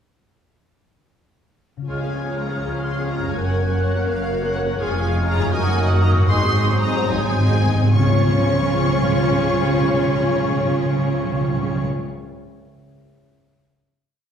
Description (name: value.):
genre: classical, dramatic, fast romantic movement for symphony orchestra.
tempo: 68-83 BPM (dotted quarters).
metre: 6/8.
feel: straight.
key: Db major.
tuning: A4 = 440 Hz.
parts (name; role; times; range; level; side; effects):
concert harp; arpeggios; 1.8-12.2 s; F2 to Ab5; -28 LUFS; left 2 dB; none.
warm symphonic violin section; melody; 1.9-11.8 s; F5 to Db6; -30 LUFS; left 2 dB; none.
clear oboe; second line; 1.9-11.8 s; Bb4 to Db5; -31 LUFS; right 1 dB; none.
large flute ensemble; second line; 1.9-11.8 s; Db6 to Gb6; -31 LUFS; equal; none.
warm clarinet; second line; 1.9-11.8 s; F4 to Bb4; -30 LUFS; left 1 dB; none.
warm symphonic violin section; second line; 1.9-11.8 s; F4 to Ab5; -30 LUFS; left 3 dB; none.
rich symphonic viola section; accompaniment; 1.9-11.8 s; Gb3 to Bb4; -27 LUFS; left 1 dB; none.
warm French horn section; sustained chords; 1.9-11.8 s; Eb3 to Db4; -27 LUFS; equal; none.
rich studio double bass section; bass; 1.9-11.8 s; F1 to Db2; -24 LUFS; right 1 dB; none.
rich symphonic cello section; bass; 1.9-11.8 s; Db2 to Db3; -27 LUFS; right 1 dB; none.
timpani; percussion; 6.3-11.9 s; Ab2 to Db3; -22 LUFS; equal; none.
room: wet recital hall reverb, RT60 1.5 s.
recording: heard from further back in the room.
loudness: -17 LUFS.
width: side -8 dB against mid.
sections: 1.9-8.0 A section; 8.0-11.5 final chord.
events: slowing down 4.1-8.0; timpani fill 6.3-8.0.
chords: 1.9 Db; 3.3 Gb; 4.8 Db/F; 5.5 Ebm/Gb; 6.3 Ab7; 8.0 Db.